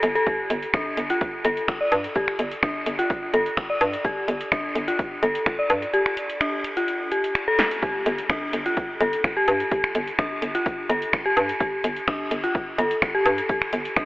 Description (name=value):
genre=minimal techno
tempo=127 BPM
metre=4/4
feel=straight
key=unclear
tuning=A4 = 440 Hz
part: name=hollow knocking FM bass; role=bass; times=0.0-13.9 s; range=G1 to G2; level=-23 LUFS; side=equal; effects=sidechain pumping
part: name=punchy analog drum machine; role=drums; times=0.0-14.1 s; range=finger snaps, hi-hat, snare drum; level=-27 LUFS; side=equal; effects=none
part: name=dark detuned synth bell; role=riff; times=0.2-14.0 s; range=D4 to D5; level=-24 LUFS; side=left 1 dB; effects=chorus, sidechain pumping, tape echo
part: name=electronic kick drum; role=drums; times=0.3-14.1 s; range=none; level=-28 LUFS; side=equal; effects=none
room=wet huge ambient reverb, RT60 8.7 s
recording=dreamy mix soaked in reverb, telephone sound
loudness=-21 LUFS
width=side -19 dB against mid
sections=0.0-14.1 A section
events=drum fill 7.6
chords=0.0 G5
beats=| 0.27 0.74 1.21 1.68 | 2.15 2.63 3.10 3.57 | 4.04 4.52 4.99 5.46 | 5.93 6.41 6.88 7.35 | 7.82 8.30 8.77 9.24 | 9.71 10.19 10.66 11.13 | 11.60 12.08 12.55 13.02 | 13.49 13.97